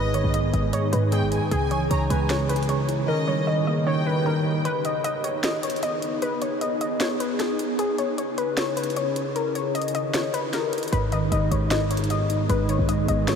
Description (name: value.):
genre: hip hop, trap.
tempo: 153 BPM.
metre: 4/4.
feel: half-time.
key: G# harmonic minor.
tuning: A4 = 438 Hz.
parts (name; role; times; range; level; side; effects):
warbly dusty pluck; melody; 0.0-13.4 s; G#4 to D#5; -26 LUFS; left 3 dB; chorus, low-pass filter, tape echo.
warm studio violin section; second line; 0.0-4.6 s; D#5 to A#5; -33 LUFS; equal; tape echo.
mellow tine electric piano; accompaniment; 0.0-4.7, 10.9-13.4 s; G#2 to D#5; -25 LUFS; right 1 dB; medium stereo tremolo, low-pass filter.
ethereal airy pad; sustained chords; 0.0-13.4 s; C#3 to A#4; -30 LUFS; right 1 dB; ensemble chorus, built-in reverb.
short 808-style bass; bass; 0.0-3.0, 10.9-13.3 s; G1 to G#2; -27 LUFS; equal; none.
trap drum kit; drums; 0.1-13.4 s; finger snaps, hi-hat, snare drum; -31 LUFS; equal; overdrive.
room: wet huge ambient reverb, RT60 7.2 s.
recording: dreamy mix soaked in reverb.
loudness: -22 LUFS.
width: side -7 dB against mid.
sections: 0.0-4.7 A section; 4.7-13.4 B section.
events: break 4.7-10.9.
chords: 0.0 G#m; 1.5 C#m; 3.1 D#; 4.7 G#m; 7.8 C#m; 9.4 D#; 10.9 G#m.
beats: 0.34 0.73 1.12 | 1.51 1.91 2.30 2.69 | 3.08 3.48 3.87 4.26 | 4.65 5.04 5.44 5.83 | 6.22 6.61 7.00 7.40 | 7.79 8.18 8.57 8.96 | 9.36 9.75 10.14 10.53 | 10.93 11.32 11.71 12.10 | 12.49 12.89 13.28.